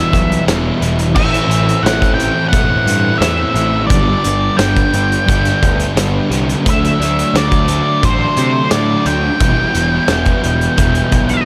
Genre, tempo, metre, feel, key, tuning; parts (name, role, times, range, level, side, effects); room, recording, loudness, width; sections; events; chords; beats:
rock, shoegaze and dream pop; 87 BPM; 4/4; straight; G major; A4 = 439 Hz
octave-fuzz lead guitar; melody; 0.0-11.4 s; C5 to G5; -20 LUFS; equal; distortion, analog delay
crunchy overdriven guitar; riff; 0.0-11.4 s; G2 to E4; -22 LUFS; equal; reverse reverb
overdriven semi-hollow guitar; riff; 0.0-11.4 s; E2 to D4; -25 LUFS; equal
thick fuzz guitar; riff; 0.0-11.4 s; E2 to D4; -24 LUFS; equal
fuzz picked electric bass; bass; 0.1-11.3 s; E1 to C3; -20 LUFS; equal; overdrive
loose indie drum kit; drums; 0.1-11.4 s; crash cymbal, hi-hat, kick drum, snare drum; -20 LUFS; equal
light reverb, small room ambience; -14 LUFS; mono
0.0-11.4 A section
0.0 Em; 1.2 Am; 3.9 G; 6.7 D; 9.4 Em
0.47 | 1.16 1.85 2.53 3.22 | 3.91 4.59 5.28 5.97 | 6.65 7.34 8.03 8.71 | 9.40 10.09 10.78